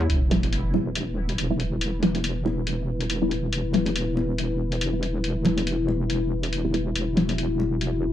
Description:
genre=deep dubstep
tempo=140 BPM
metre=4/4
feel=swing 57% on 16ths, half-time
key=E minor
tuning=A4 = 440 Hz
part: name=dark analog pad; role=sustained chords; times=0.0-8.1 s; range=E4 to C#5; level=-29 LUFS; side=left 4 dB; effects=chorus
part: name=wobble bass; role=bass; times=0.0-8.1 s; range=E1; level=-27 LUFS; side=equal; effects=chorus
part: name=congas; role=percussion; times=0.0-7.7 s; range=none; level=-30 LUFS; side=left 2 dB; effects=dub echo
part: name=electronic hi-hat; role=drums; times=0.1-7.9 s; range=none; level=-32 LUFS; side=left 2 dB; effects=none
part: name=sub drop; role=sound effects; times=0.1-1.8 s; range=none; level=-27 LUFS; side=right 1 dB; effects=none
part: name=filtered dub chord stab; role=stabs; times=0.3-7.7 s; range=G3 to E4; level=-28 LUFS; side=right 1 dB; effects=phaser, dub echo
room=light reverb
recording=dark, warm production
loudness=-22 LUFS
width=side -11 dB against mid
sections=0.1-8.1 A section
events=impact 0.1-1.8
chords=0.1 Em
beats=| 0.10 0.53 0.95 1.38 | 1.81 2.24 2.67 3.10 | 3.53 3.96 4.38 4.81 | 5.24 5.67 6.10 6.53 | 6.96 7.38 7.81

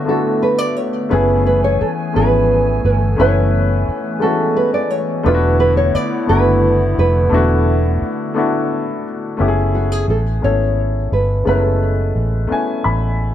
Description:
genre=slow six-eight R&B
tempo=58 BPM (dotted quarters)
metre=6/8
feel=straight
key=F# minor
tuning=A4 = 442 Hz
part: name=nylon-string guitar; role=melody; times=0.0-13.1 s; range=F#4 to D5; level=-18 LUFS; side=right 2 dB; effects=tape echo
part: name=warm baby grand piano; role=accompaniment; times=0.0-13.3 s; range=G#3 to B5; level=-20 LUFS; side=left 4 dB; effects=plate reverb
part: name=hollow soft pad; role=sustained chords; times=0.0-9.4 s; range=D3 to G#5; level=-23 LUFS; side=equal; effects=chorus
part: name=vintage muted fingered electric bass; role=bass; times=1.1-13.3 s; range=E1 to A1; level=-16 LUFS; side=equal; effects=none
room=moderate studio reverb, RT60 0.6 s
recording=none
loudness=-14 LUFS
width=side -11 dB against mid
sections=0.0-9.4 A section; 9.4-13.3 B section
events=grand piano fill 12.5-13.3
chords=0.0 E7sus4; 1.1 F#m11; 5.2 E7sus4; 9.4 F#m11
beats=0.08 | 1.11 2.15 | 3.18 4.21 | 5.25 6.28 | 7.32 8.35 | 9.39 10.42 | 11.46 12.49

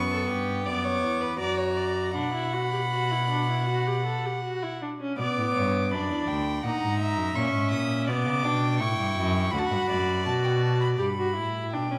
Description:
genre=classical, baroque-style fugue for string quartet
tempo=82 BPM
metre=4/4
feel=straight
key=B minor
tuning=A4 = 440 Hz
part: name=warm violin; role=melody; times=0.0-12.0 s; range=G5 to D#6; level=-34 LUFS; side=equal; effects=none
part: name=warm viola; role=accompaniment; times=0.0-12.0 s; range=B3 to A4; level=-32 LUFS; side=equal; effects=none
part: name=rich cello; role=bass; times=0.0-12.0 s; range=D2 to C#3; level=-32 LUFS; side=equal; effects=none
part: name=rich violin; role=second line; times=0.1-11.0 s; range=G4 to G5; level=-35 LUFS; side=equal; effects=none
room=wet scoring stage reverb, RT60 1.8 s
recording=recorded in a church or concert hall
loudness=-27 LUFS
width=mono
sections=0.0-5.2 A section; 5.2-11.0 B section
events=none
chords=0.0 C#7(b5, no3); 0.7 Bm/F#; 1.4 F#; 2.1 Bm; 6.6 A#dim; 8.1 Bm; 11.0 Gmaj7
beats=0.65 1.39 | 2.15 2.91 3.67 4.43 | 5.18 5.92 6.64 7.36 | 8.07 8.79 9.52 10.26 | 10.99 11.73

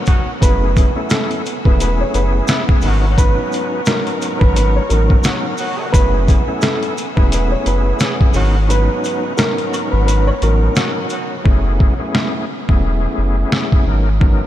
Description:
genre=hip hop, boom-bap hip-hop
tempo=87 BPM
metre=4/4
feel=swing 57% on 16ths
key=unclear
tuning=A4 = 436 Hz
part: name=bright tonewheel organ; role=accompaniment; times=0.0-14.5 s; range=F#2 to B4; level=-21 LUFS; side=left 1 dB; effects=overdrive, chorus vibrato, fast rotary speaker, high-pass filter, low-pass filter
part: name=rich studio string section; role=sustained chords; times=0.0-11.4 s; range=B3 to E6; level=-31 LUFS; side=left 1 dB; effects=high-pass filter, low-pass filter
part: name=clear horn section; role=stabs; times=0.1-11.3 s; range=C#3 to G#4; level=-30 LUFS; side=equal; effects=none
part: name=trip hop sampler-style drum kit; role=drums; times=0.1-14.4 s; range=hi-hat, kick drum, rim click, snare drum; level=-16 LUFS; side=equal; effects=vintage 12-bit sampler grit
part: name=maracas and woodblock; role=percussion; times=0.1-11.3 s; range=none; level=-34 LUFS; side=right 4 dB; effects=none
part: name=dark upright piano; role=melody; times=0.4-10.7 s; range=A4 to C#5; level=-23 LUFS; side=right 2 dB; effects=high-pass filter, low-pass filter, ping-pong delay
part: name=warm sub bass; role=bass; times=0.4-14.4 s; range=E1 to A1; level=-16 LUFS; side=equal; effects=none
room=moderate huge ambient reverb, RT60 7.6 s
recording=dreamy mix soaked in reverb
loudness=-13 LUFS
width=side -12 dB against mid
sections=0.0-11.5 A section; 11.5-14.5 B section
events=kick muted 8.7-11.5; hi-hats muted 11.5-14.5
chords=0.4 F#m11; 2.8 G#m11; 5.9 F#m11; 8.4 G#m11; 11.5 F#m11; 13.9 G#m11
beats=| 0.42 1.11 1.80 2.49 | 3.18 3.87 4.56 5.25 | 5.94 6.63 7.32 8.01 | 8.70 9.38 10.07 10.77 | 11.45 12.14 12.83 13.52 | 14.21

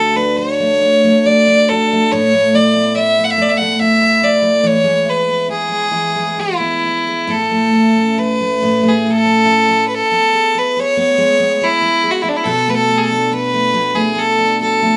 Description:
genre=celtic folk, Celtic slow air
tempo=70 BPM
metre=3/4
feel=rubato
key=A major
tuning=A4 = 444 Hz
part: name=clear fiddle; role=melody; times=0.0-15.0 s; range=D4 to F#5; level=-16 LUFS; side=equal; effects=none
part: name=picked steel-string acoustic guitar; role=accompaniment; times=0.0-15.0 s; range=D2 to G#4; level=-20 LUFS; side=equal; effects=none
room=moderate small room reverb, RT60 0.6 s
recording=band playing live in one room, nothing above 10.9 kHz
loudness=-14 LUFS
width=mono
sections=0.0-15.0 A section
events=none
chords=0.0 D; 2.1 Asus2; 4.7 E; 7.3 A; 9.9 E; 12.4 Bm7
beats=0.37 1.24 | 2.10 2.95 3.79 | 4.66 5.53 6.40 | 7.30 8.20 9.08 | 9.93 10.77 11.60 | 12.44 13.29 14.14

